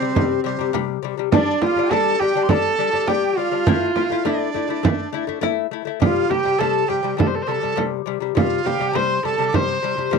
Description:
mongolian traditional, Mongolian folk; 102 BPM; 4/4; straight; C zhi mode; A4 = 440 Hz
rich horsehead fiddle; melody; 0.0-10.1 s; C4 to C5; -22 LUFS; right 3 dB
bright dizi; second line; 0.0-10.1 s; C5 to D6; -28 LUFS; right 11 dB
lute; arpeggios; 0.0-10.2 s; C3 to E4; -23 LUFS; left 18 dB
frame drum; percussion; 0.2-10.2 s; -21 LUFS; right 5 dB
light reverb; dry, close 1970s-style studio recording; -18 LUFS; side -5 dB against mid
0.0-10.2 A section
0.0 C5; 1.3 G5; 3.7 A5; 6.0 C5
0.15 0.74 | 1.32 1.91 2.50 3.08 | 3.67 4.25 4.84 5.43 | 6.01 6.60 7.19 7.78 | 8.36 8.95 9.54 10.12

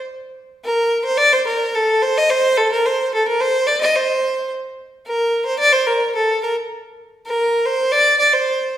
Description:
medieval; 109 BPM; 2/4; straight; C dorian; A4 = 440 Hz
rich fiddle; solo; 0.6-8.7 s; A4 to Eb5; -15 LUFS; equal
wet recital hall reverb, RT60 1.4 s; recorded in a church or concert hall; -15 LUFS; side -11 dB against mid
0.1-8.8 A section
| 0.08 0.64 | 1.19 1.74 | 2.29 2.84 | 3.39 3.94 | 4.49 5.04 | 5.59 6.14 | 6.69 7.24 | 7.79 8.33

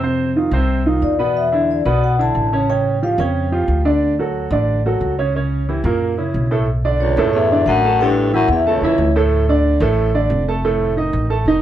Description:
jazz; 181 BPM; 4/4; straight; B minor from 6.7 s; A4 = 440 Hz
warm upright piano; accompaniment; 0.0-11.6 s; A2 to A5; -18 LUFS; right 2 dB
upright bass; bass; 0.0-11.6 s; E#1 to F#2; -20 LUFS; equal
vibraphone with medium mallets; melody; 1.0-3.8, 7.0-9.1 s; C#5 to A5; -19 LUFS; left 3 dB
warm baritone saxophone; second line; 7.0-9.1 s; C#2 to G2; -20 LUFS; left 2 dB
moderate small room reverb, RT60 0.6 s; heard from further back in the room; -15 LUFS; side -11 dB against mid
0.0-6.7 A section; 6.7-11.6 B section
0.0 F5; 1.4 E5; 2.7 Aaug7; 4.0 Dmaj7; 5.3 C#dim; 6.0 F#7; 6.7 Bm9; 8.0 A7; 9.3 D5; 10.6 F7
| 0.02 0.36 0.69 1.02 | 1.35 1.69 2.02 2.35 | 2.68 3.02 3.35 3.68 | 4.01 4.35 4.68 5.01 | 5.34 5.68 6.01 6.34 | 6.67 7.00 7.34 7.67 | 8.00 8.33 8.66 8.99 | 9.32 9.65 9.98 10.32 | 10.65 10.98 11.31

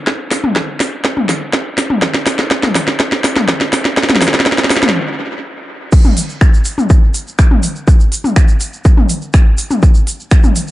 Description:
techno; 123 BPM; 4/4; straight
electronic kick drum; drums; 0.1-10.4 s; -10 LUFS; equal; overdrive, high-pass filter on kick, high-pass filter on room
techno drum kit; drums; 0.1-10.7 s; crash cymbal, finger snaps, hi-hat, snare drum, toms; -14 LUFS; equal; sidechain pumping on hats, sidechain pumping on toms, sidechain pumping on cymbals, dub echo
tube shaker; percussion; 5.9-10.7 s; -25 LUFS; right 2 dB
moderate spring reverb, RT60 2.0 s; echo-heavy mix, nothing above 10.6 kHz; -10 LUFS; side -16 dB against mid
0.0-5.9 A section; 5.9-10.7 B section
build-up 0.0-5.9; drum fill 0.0-4.9; stop 4.9-5.9; drop 5.9-10.7
| 0.07 0.56 1.05 1.53 | 2.02 2.51 3.00 3.48 | 3.97 4.46 4.95 5.44 | 5.92 6.41 6.90 7.39 | 7.88 8.36 8.85 9.34 | 9.83 10.31

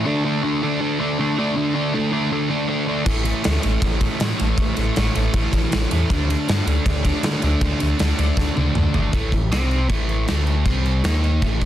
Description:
hard rock; 159 BPM; 4/4; straight; A4 = 439 Hz
sludgy distorted guitar; riff; 0.0-11.7 s; A2 to D#4; -21 LUFS; equal; overdrive
sub bass with octave; bass; 3.1-11.7 s; G1 to D3; -21 LUFS; equal
gated 80s drum kit; drums; 3.1-11.7 s; crash cymbal, kick drum, ride cymbal, snare drum, toms; -23 LUFS; equal
light reverb; dense, heavily limited modern master, faint mains hum; -18 LUFS; side -12 dB against mid
0.0-9.1 A section; 9.1-11.7 B section
drum fill 8.4-9.1
0.1 D5; 3.1 A5; 6.1 D5; 9.1 A5; 9.5 C5; 9.9 A5; 10.3 D5; 10.7 C5; 11.0 D#5
| 0.06 0.44 0.81 1.19 | 1.57 1.95 2.32 2.70 | 3.08 3.45 3.83 4.21 | 4.59 4.96 5.34 5.72 | 6.10 6.48 6.86 7.23 | 7.61 7.99 8.37 8.75 | 9.13 9.52 9.90 10.28 | 10.66 11.05 11.43

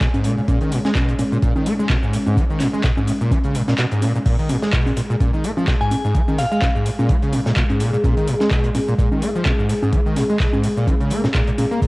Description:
acid house; 127 BPM; 4/4; swing 55% on 16ths; Bb phrygian; A4 = 440 Hz
dark analog pad; sustained chords; 0.0-11.9 s; Ab3 to Bb4; -25 LUFS; equal; chorus, sidechain pumping, cassette tape
overdriven acid bass; riff; 0.0-11.9 s; Ab2 to Bb3; -20 LUFS; equal; distortion, ensemble chorus, sidechain pumping, cassette tape, tape echo
electro analog drum machine; drums; 0.0-11.9 s; congas, crash cymbal, handclaps, hi-hat, shaker; -25 LUFS; equal; overdrive
electronic kick drum; drums; 0.0-11.9 s; -20 LUFS; equal; overdrive
tight metal drum kit; drums; 0.0-11.9 s; hi-hat, snare drum; -35 LUFS; equal; high-pass filter on hats, high-pass filter on snare, high-pass filter on room
glassy synth bell; melody; 5.8-6.6 s; F5 to Ab5; -28 LUFS; left 1 dB; chorus, cassette tape, tape echo
moderate spring reverb, RT60 1.9 s, digital ambience; home recording on cassette; -16 LUFS; side -22 dB against mid
0.0-11.9 A section
kick drops out 3.8-4.3
0.0 Bbm7
0.01 | 0.48 0.95 1.43 1.90 | 2.37 2.84 3.31 3.79 | 4.26 4.73 5.20 5.68 | 6.15 6.62 7.09 7.57 | 8.04 8.51 8.98 9.46 | 9.93 10.40 10.87 11.35 | 11.82

